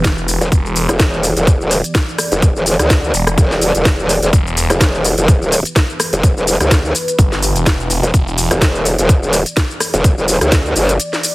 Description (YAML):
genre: bass house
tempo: 126 BPM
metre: 4/4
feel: swing 56% on 16ths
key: E minor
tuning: A4 = 441 Hz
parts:
  - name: sweeping resonant pad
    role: sustained chords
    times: 0.0-11.3 s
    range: E3 to D5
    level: -25 LUFS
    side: equal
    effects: chorus, sidechain pumping
  - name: phased detuned saw bass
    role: bass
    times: 0.0-8.5 s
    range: E1 to G1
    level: -18 LUFS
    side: equal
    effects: phaser, tube saturation, sidechain pumping
  - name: electronic kick drum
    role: drums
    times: 0.0-10.6 s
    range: none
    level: -12 LUFS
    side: equal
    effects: none
  - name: garage drum kit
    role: drums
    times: 0.0-11.3 s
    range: hi-hat, rim click, shaker, snare drum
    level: -18 LUFS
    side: equal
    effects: none
  - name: growl bass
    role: bass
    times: 0.4-11.0 s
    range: E1 to D2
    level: -14 LUFS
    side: equal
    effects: distortion, chorus, tube saturation, sidechain pumping
room: little or no reverb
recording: heavily compressed radio sound, multiband compression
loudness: -11 LUFS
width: side -20 dB against mid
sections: 0.0-11.3 A section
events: break 11.0-11.3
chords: 0.0 Em